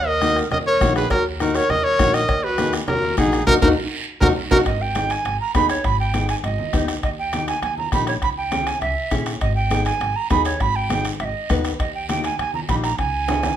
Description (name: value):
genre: latin, cumbia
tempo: 202 BPM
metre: 4/4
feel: straight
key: G# harmonic minor from 4.7 s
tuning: A4 = 438 Hz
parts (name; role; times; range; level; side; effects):
- clear trumpet; melody; 0.0-4.6 s; G#4 to D#5; -20 LUFS; equal; none
- mellow tenor recorder; second line; 0.0-13.6 s; D#4 to B5; -23 LUFS; right 5 dB; none
- upright bass; bass; 0.0-13.5 s; G#1 to D#2; -26 LUFS; equal; none
- nylon-string guitar; accompaniment; 0.2-13.5 s; A#3 to B4; -25 LUFS; left 4 dB; none
- bombo; percussion; 0.2-13.6 s; none; -25 LUFS; left 1 dB; none
- congas; percussion; 0.2-13.5 s; none; -30 LUFS; right 1 dB; none
- guiro; percussion; 0.2-13.6 s; none; -35 LUFS; right 5 dB; none
- cowbell and timbales; percussion; 0.5-13.5 s; none; -32 LUFS; right 6 dB; none
room: moderate large studio reverb, RT60 0.9 s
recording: minimal, uncompressed stereo recording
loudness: -18 LUFS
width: side -10 dB against mid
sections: 0.0-4.7 A section; 4.7-13.6 B section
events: drum fill 3.5-4.7, 13.3; band accent 3.5-4.7; recorder solo 4.7-13.6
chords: 0.0 D#m; 4.7 G#m; 7.0 D#; 8.2 C#m; 9.4 G#m; 11.8 D#; 13.0 C#m